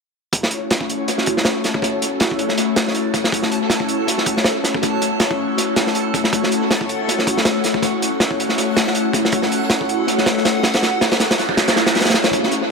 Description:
drum and bass, jungle; 160 BPM; 4/4; swing 54% on 16ths; F# minor; A4 = 440 Hz
airy breathy pad; sustained chords; 0.3-12.7 s; A3 to C#5; -20 LUFS; left 2 dB; chorus, phaser
crunchy breakbeat drum kit; drums; 0.3-12.6 s; hi-hat, kick drum, snare drum; -18 LUFS; right 1 dB; high-pass filter on kick, high-pass filter on hats, high-pass filter on snare, high-pass filter on room, tape echo
backwards swelling texture; texture; 1.6-12.7 s; E4 to A5; -26 LUFS; right 2 dB; built-in reverb
noise sweep; sound effects; 11.4-12.3 s; -25 LUFS; right 5 dB
saturated sub bass; bass; 12.3-12.7 s; barely audible
moderate echo chamber reverb, RT60 1.6 s, studio reverb; echo-heavy mix; -16 LUFS; side -4 dB against mid
0.3-12.3 A section
noise sweep 11.4-12.3
0.3 F#m7
| 0.33 0.70 1.08 1.46 | 1.83 2.21 2.58 2.96 | 3.33 3.71 4.08 4.46 | 4.83 5.21 5.58 5.96 | 6.33 6.71 7.08 7.46 | 7.83 8.21 8.58 8.96 | 9.33 9.71 10.08 10.46 | 10.83 11.21 11.58 11.96 | 12.33 12.71

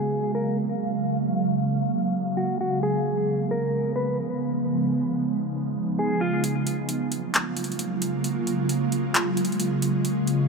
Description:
hip hop, atmospheric cloud-rap; 133 BPM; 4/4; half-time; F# major; A4 = 440 Hz
mellow electric guitar; melody; 0.0-6.4 s; E#4 to B4; -29 LUFS; left 1 dB; low-pass filter, ping-pong delay
ethereal airy pad; sustained chords; 0.0-10.5 s; C#3 to E#5; -24 LUFS; right 2 dB; ensemble chorus, built-in reverb
booming analog drum machine; drums; 6.4-10.4 s; handclaps, hi-hat; -26 LUFS; equal
light reverb; low-pass filter; -23 LUFS; side -4 dB against mid
0.0-6.4 A section; 6.4-10.5 B section
filter sweep 0.0-6.4; kick muted 6.4-10.5
0.0 F#maj9; 2.8 C#7; 6.4 F#maj9
0.12 0.57 | 1.02 1.47 1.93 2.38 | 2.83 3.28 3.73 4.18 | 4.63 5.08 5.54 5.99 | 6.44 6.89 7.34 7.79 | 8.24 8.69 9.14 9.60 | 10.05

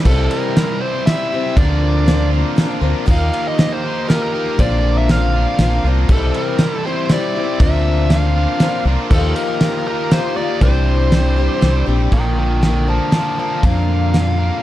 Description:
folk rock and heartland rock; 119 BPM; 3/4; straight; A4 = 439 Hz
picked old ladder-braced acoustic guitar; accompaniment; 0.0-14.6 s; Bb2 to Bb4; -23 LUFS; left 7 dB
overdriven tonewheel organ; sustained chords; 0.0-14.6 s; C4 to D5; -31 LUFS; right 1 dB
cranked stack guitar; riff; 0.0-14.6 s; Bb2 to G4; -23 LUFS; right 2 dB; overdrive
bluesy overdriven lead guitar; melody; 0.1-14.6 s; A4 to A5; -22 LUFS; right 1 dB; distortion
deep dub fingered electric bass; bass; 0.1-14.5 s; Bb1 to F2; -16 LUFS; equal
cloth-damped thuddy drum kit; drums; 0.1-14.3 s; crash cymbal, kick drum, ride cymbal, snare drum; -17 LUFS; equal
little or no reverb; dark, warm production; -14 LUFS; side -14 dB against mid
0.1-12.1 A section; 12.1-14.6 B section
lead electric guitar solo 12.1-14.6
0.1 C; 1.6 Bbadd9/D; 3.1 Ebadd9; 4.6 Bbadd9; 6.1 C; 7.6 Bbadd9/D; 9.1 Ebadd9; 10.6 Cadd9; 12.1 Bb
| 0.06 0.56 1.06 | 1.57 2.07 2.57 | 3.08 3.58 4.08 | 4.59 5.09 5.59 | 6.09 6.60 7.10 | 7.60 8.10 8.61 | 9.11 9.61 10.11 | 10.62 11.12 11.62 | 12.13 12.63 13.13 | 13.64 14.14

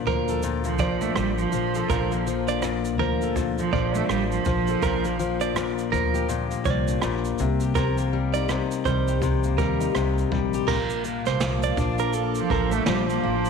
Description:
acoustic pop; 82 BPM; 4/4; swing 60% on 16ths; Bb major; A4 = 442 Hz
fingerpicked steel-string acoustic guitar; accompaniment; 0.0-13.5 s; Bb2 to Bb4; -26 LUFS; left 9 dB
upright bass; bass; 0.0-13.5 s; A1 to Eb2; -28 LUFS; right 1 dB
direct-recorded clean electric guitar; arpeggios; 0.1-12.7 s; A4 to D5; -29 LUFS; right 10 dB
jazz brush drum kit; drums; 0.1-13.5 s; crash cymbal, kick drum, rim click, shaker, snare drum; -30 LUFS; right 4 dB
rich cello; second line; 0.6-5.4, 12.4-13.5 s; F3 to A3; -27 LUFS; right 11 dB
ethereal airy pad; sustained chords; 11.0-13.5 s; Bb3 to D6; -31 LUFS; equal; ensemble chorus, built-in reverb
moderate echo chamber reverb, RT60 2.2 s; 1960s-style stereo with parts hard left and right; -22 LUFS; side -6 dB against mid
0.0-10.7 A section; 10.7-13.5 B section
0.0 Bbmaj7; 4.8 Gm7/Bb; 7.4 Cm7; 10.7 Bbmaj7
0.43 1.17 | 1.90 2.63 3.37 4.10 | 4.83 5.56 6.29 7.03 | 7.76 8.49 9.22 9.95 | 10.68 11.41 12.15 12.88

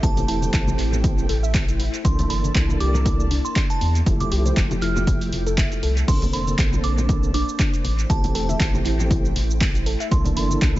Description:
deep house; 119 BPM; 4/4; swing 56% on 16ths; A4 = 440 Hz
glassy synth bell; melody; 0.0-10.6 s; A5 to F6; -31 LUFS; right 3 dB; chorus, dub echo
soft string machine; sustained chords; 0.0-10.8 s; F3 to A5; -33 LUFS; equal; ensemble chorus, sidechain pumping
tonewheel organ; stabs; 0.0-10.8 s; D3 to A4; -29 LUFS; right 1 dB; overdrive, chorus vibrato, slow rotary speaker, vintage 12-bit sampler grit, sidechain pumping, dub echo
round analog bass; bass; 0.0-10.8 s; E1 to E2; -23 LUFS; equal; tube saturation, sidechain pumping
electronic kick drum; drums; 0.0-10.7 s; -21 LUFS; equal; overdrive
punchy analog drum machine; drums; 0.0-10.8 s; crash cymbal, handclaps, hi-hat, shaker; -29 LUFS; right 1 dB; overdrive, dub echo
congas; percussion; 0.2-10.8 s; -31 LUFS; left 2 dB; dub echo
warbly dusty pluck; arpeggios; 0.3-10.7 s; D4 to E5; -32 LUFS; equal; chorus, sidechain pumping, dub echo
little or no reverb; echo-heavy mix, nothing above 7.8 kHz; -18 LUFS; side -16 dB against mid
0.0-10.8 A section
0.0 Am7; 2.0 C13; 4.1 Fmaj9; 6.1 Bbmaj9; 7.8 Am7; 10.1 C13
| 0.03 0.54 1.04 1.54 | 2.05 2.55 3.06 3.56 | 4.06 4.57 5.07 5.58 | 6.08 6.59 7.09 7.59 | 8.10 8.60 9.11 9.61 | 10.12 10.62

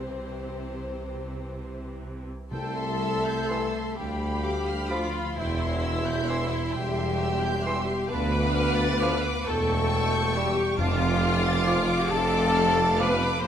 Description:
classical, slow romantic movement for symphony orchestra; 38-46 BPM (dotted quarters); 6/8; rubato; C major; A4 = 440 Hz
warm chamber violin section; melody; 0.0-13.5 s; C5 to D6; -36 LUFS; left 2 dB
warm studio violin section; second line; 0.0-13.5 s; C4 to A6; -35 LUFS; equal
rich studio viola section; accompaniment; 0.0-13.5 s; E3 to C5; -30 LUFS; left 1 dB
dark studio cello section; bass; 0.0-13.5 s; C2 to C3; -33 LUFS; right 1 dB
dark studio double bass section; bass; 0.0-13.5 s; E1 to D2; -32 LUFS; right 2 dB
mellow concert flute; second line; 2.5-13.5 s; E5 to B5; -32 LUFS; left 2 dB
dark French horn section; sustained chords; 2.5-13.5 s; E3 to C4; -34 LUFS; left 5 dB
clear tuba; bass; 2.5-13.5 s; E1 to D2; -33 LUFS; right 3 dB
timpani; percussion; 2.5-3.9, 10.8-12.1 s; F2 to C3; -35 LUFS; left 2 dB
warm oboe; second line; 3.5-13.2 s; B5 to D6; -36 LUFS; right 2 dB
mellow bassoon; accompaniment; 3.5-13.2 s; E3 to G3; -35 LUFS; equal
moderate scoring stage reverb, RT60 2.0 s; -23 LUFS; side -9 dB against mid
0.0-2.5 A section; 2.5-13.5 B section
0.0 C; 4.0 G7/D; 5.4 C/E; 8.1 Dm; 9.5 A7/E; 10.8 Dm/F
0.97 | 2.52 3.98 | 5.37 6.75 | 8.11 9.47 | 10.79 12.11 | 13.44

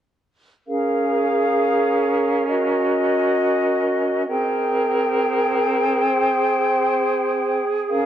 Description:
hip hop; free time; Ab major; A4 = 440 Hz
bright flute section; sustained chords; 0.7-8.1 s; C4 to G5; -18 LUFS; equal
wet lush hall reverb, RT60 2.6 s; worn, warbling old tape, cassette tape, warbly pitch drift; -18 LUFS; side -10 dB against mid
0.7-8.1 A section
0.7 Db6; 2.5 Gb6; 4.3 Abmaj9
free time

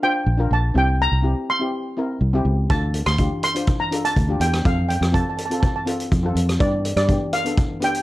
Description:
calypso; 123 BPM; 4/4; straight; F major; A4 = 440 Hz
steel pan; melody; 0.0-8.0 s; D5 to C6; -23 LUFS; right 1 dB
steel pan; accompaniment; 0.0-8.0 s; B3 to C5; -26 LUFS; left 2 dB; plate reverb
fingered electric bass; bass; 0.3-7.2 s; Bb1 to G2; -20 LUFS; equal
street-band drum kit; drums; 2.7-8.0 s; hi-hat, kick drum, rim click; -22 LUFS; equal
light reverb; dark, warm production; -18 LUFS; side -16 dB against mid
0.0-8.0 A section
0.0 Bbadd9; 0.8 C; 2.7 Dm7; 4.7 F; 6.6 G
0.27 | 0.76 1.24 1.73 2.22 | 2.70 3.19 3.68 4.16 | 4.65 5.14 5.62 6.11 | 6.60 7.09 7.57

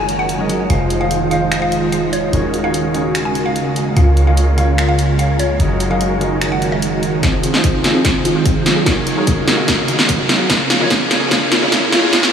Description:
future bass; 147 BPM; 4/4; half-time; Db major; A4 = 442 Hz
mallet-like synth pluck; melody; 0.0-6.8 s; Db5 to Ab5; -23 LUFS; left 1 dB; chorus, phaser, sidechain pumping, diffuse ambient delay
warm grand piano; accompaniment; 0.0-12.3 s; Db3 to Eb5; -22 LUFS; left 1 dB; sidechain pumping, tape echo
ethereal airy pad; sustained chords; 0.0-12.3 s; Db3 to Ab4; -23 LUFS; right 2 dB; ensemble chorus, built-in reverb, sidechain pumping
supersaw chords; riff; 0.0-12.3 s; F3 to F5; -21 LUFS; right 1 dB; phaser, sidechain pumping, low-pass filter, tape echo
warm 808-style bass; bass; 0.0-12.3 s; Eb1 to Eb2; -18 LUFS; equal; sidechain pumping, high-pass filter
big-room dance drum kit; drums; 0.1-12.3 s; finger snaps, hi-hat, snare drum; -18 LUFS; equal
wide unison pluck; arpeggios; 7.2-12.3 s; Bb3 to Ab4; -23 LUFS; left 2 dB
electronic kick drum; drums; 7.2-12.2 s; -20 LUFS; equal
riser; sound effects; 9.8-12.3 s; -24 LUFS; right 2 dB
wet huge ambient reverb, RT60 5.0 s; dreamy mix soaked in reverb, high-pass filter, studio ambience; -13 LUFS; side -8 dB against mid
0.0-7.2 A section; 7.2-12.3 B section
build-up 7.2-12.3; drum fill 7.2-12.3; filter sweep on supersaw synth 7.2-12.3; filter sweep 7.2-12.3; riser 9.8-12.3
0.0 Gb69; 0.7 Fm7; 2.3 Ab9sus4/Eb; 4.0 Db6; 5.6 Gb69; 7.2 Fm7; 8.9 Ab9sus4/Eb; 10.5 Db6
0.29 | 0.70 1.11 1.52 1.93 | 2.33 2.74 3.15 3.56 | 3.97 4.37 4.78 5.19 | 5.60 6.01 6.42 6.82 | 7.23 7.64 8.05 8.46 | 8.86 9.27 9.68 10.09 | 10.50 10.90 11.31 11.72 | 12.13

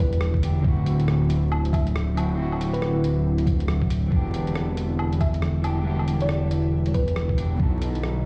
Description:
future garage; 138 BPM; 4/4; swing 61% on 16ths; E minor; A4 = 440 Hz
thumb-piano-like synth pluck; melody; 0.0-7.3 s; B4 to E5; -36 LUFS; equal; chorus, cassette tape, analog delay
electric guitar at the edge of break-up; accompaniment; 0.0-8.3 s; B2 to A4; -32 LUFS; equal; sidechain pumping, analog delay
ethereal airy pad; sustained chords; 0.0-8.3 s; D3 to F#4; -31 LUFS; equal; ensemble chorus, built-in reverb, phaser, sidechain pumping
swelling detuned saw bass; bass; 0.0-8.3 s; D1 to B1; -27 LUFS; equal
lo-fi sampler-style drum kit; drums; 0.1-8.1 s; hi-hat, rim click, woodblock; -37 LUFS; equal
electronic kick drum; drums; 0.3-7.7 s; -25 LUFS; equal
light reverb, digital ambience; played on a big sound system in a bare room, large studio reverb, vinyl crackle, studio reverb; -23 LUFS; mono
0.0-8.3 A section
0.0 Em7; 0.6 D9; 4.1 Em7; 7.6 B7
0.21 | 0.64 1.08 1.51 1.95 | 2.38 2.82 3.25 3.69 | 4.12 4.56 4.99 5.43 | 5.86 6.29 6.73 7.17 | 7.60 8.04

